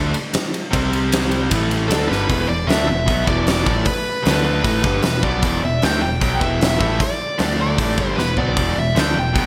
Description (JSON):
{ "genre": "hard rock", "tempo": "153 BPM", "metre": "4/4", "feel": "straight", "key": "E minor", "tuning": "A4 = 439 Hz", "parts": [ { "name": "cranked stack guitar", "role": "riff", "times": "0.0-9.5 s", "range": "E2 to D4", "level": "-26 LUFS", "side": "equal", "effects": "overdrive" }, { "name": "overdriven electric guitar", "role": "riff", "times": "0.0-9.5 s", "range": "E2 to D4", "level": "-27 LUFS", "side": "equal", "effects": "none" }, { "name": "picked electric bass", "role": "bass", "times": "0.0-9.5 s", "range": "E1 to D2", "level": "-26 LUFS", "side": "equal", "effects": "none" }, { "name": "big rock drum kit", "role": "drums", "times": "0.1-9.4 s", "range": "hi-hat, kick drum, ride cymbal, snare drum, toms", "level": "-23 LUFS", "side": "equal", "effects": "gated reverb" }, { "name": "dark smooth lead guitar", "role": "melody", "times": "1.9-9.5 s", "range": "A4 to G5", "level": "-25 LUFS", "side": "equal", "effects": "overdrive" } ], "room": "moderate lush hall reverb, RT60 1.9 s, small room ambience", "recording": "bright 1980s-style digital production", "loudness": "-19 LUFS", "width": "mono", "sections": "0.0-2.3 A section; 2.3-9.5 B section", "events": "drum fill 2.1, 8.2-8.6", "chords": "0.0 G5; 0.7 C5; 1.5 A5; 1.9 G5; 2.3 E5; 4.3 D5; 4.7 Em; 7.4 D5; 7.8 Em", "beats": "0.34 | 0.73 1.12 1.51 1.91 | 2.30 2.69 3.08 3.47 | 3.87 4.26 4.65 5.04 | 5.43 5.83 6.22 6.61 | 7.00 7.40 7.79 8.18 | 8.57 8.97 9.36" }